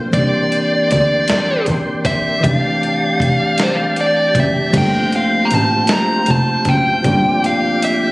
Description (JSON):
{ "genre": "slow six-eight R&B", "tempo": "52 BPM (dotted quarters)", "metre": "6/8", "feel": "straight", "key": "G dorian", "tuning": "A4 = 439 Hz", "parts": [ { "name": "overdriven tine electric piano", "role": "accompaniment", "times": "0.0-8.1 s", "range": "E3 to A4", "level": "-19 LUFS", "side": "equal", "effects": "none" }, { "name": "tonewheel organ", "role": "sustained chords", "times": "0.0-8.1 s", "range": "Bb3 to C6", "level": "-23 LUFS", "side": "equal", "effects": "chorus vibrato, slow rotary speaker" }, { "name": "dark smooth lead guitar", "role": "melody", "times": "0.1-8.1 s", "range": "C5 to Bb5", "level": "-16 LUFS", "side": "equal", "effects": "overdrive" }, { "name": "warm double bass", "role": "bass", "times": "0.1-7.1 s", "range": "F1 to E2", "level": "-18 LUFS", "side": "equal", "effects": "none" }, { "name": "dusty soul sampler-style drum kit", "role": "drums", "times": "0.1-8.0 s", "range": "crash cymbal, hi-hat, kick drum, snare drum", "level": "-22 LUFS", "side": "equal", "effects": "none" } ], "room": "little or no reverb", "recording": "recorded on a phone in the room, studio reverb", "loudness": "-13 LUFS", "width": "side -22 dB against mid", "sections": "0.0-4.7 A section; 4.7-8.1 B section", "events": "none", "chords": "0.1 C9; 2.4 Fmaj13; 4.7 Gm11" }